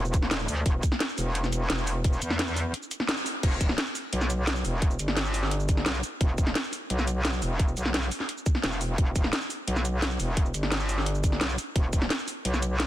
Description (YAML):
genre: dark technical drum and bass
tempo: 173 BPM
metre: 4/4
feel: straight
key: E minor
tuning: A4 = 441 Hz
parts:
  - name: metallic wobble bass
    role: bass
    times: 0.0-12.9 s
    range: E1 to E2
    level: -28 LUFS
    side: equal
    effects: chorus, overdrive
  - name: drum and bass drum kit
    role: drums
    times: 0.1-12.9 s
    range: crash cymbal, hi-hat, shaker, snare drum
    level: -29 LUFS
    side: equal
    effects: none
  - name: electronic kick drum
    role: drums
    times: 0.1-12.0 s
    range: none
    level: -24 LUFS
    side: equal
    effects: none
room: little or no reverb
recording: dense, heavily limited modern master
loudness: -25 LUFS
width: side -14 dB against mid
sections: 0.0-3.4 A section; 3.4-12.9 A section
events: drop 0.0-3.4, 3.4-12.9; break 2.7-3.4; band accent 3.1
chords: none